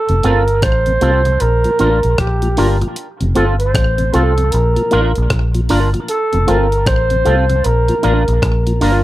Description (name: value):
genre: roots reggae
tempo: 77 BPM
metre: 4/4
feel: swing 62% on 16ths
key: F major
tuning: A4 = 440 Hz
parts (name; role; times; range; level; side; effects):
- mellow flugelhorn; melody; 0.0-8.8 s; G4 to C5; -17 LUFS; right 1 dB; tape echo
- mellow tonewheel organ; accompaniment; 0.1-8.9 s; F2 to F4; -20 LUFS; left 2 dB; chorus vibrato, slow rotary speaker, slapback echo
- vintage muted fingered electric bass; bass; 0.1-9.0 s; F1 to C2; -15 LUFS; equal; none
- breakbeat sampler-style drum kit; drums; 0.1-9.0 s; hi-hat, kick drum, rim click; -20 LUFS; equal; none
- electric guitar with an envelope filter; accompaniment; 0.2-9.0 s; C4 to Bb4; -20 LUFS; right 2 dB; analog chorus, tape echo
room: little or no reverb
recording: none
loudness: -12 LUFS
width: side -15 dB against mid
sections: 0.0-9.0 A section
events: none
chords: 0.0 F; 1.4 Bb; 3.0 F; 4.5 Bb; 6.1 F; 7.6 Bb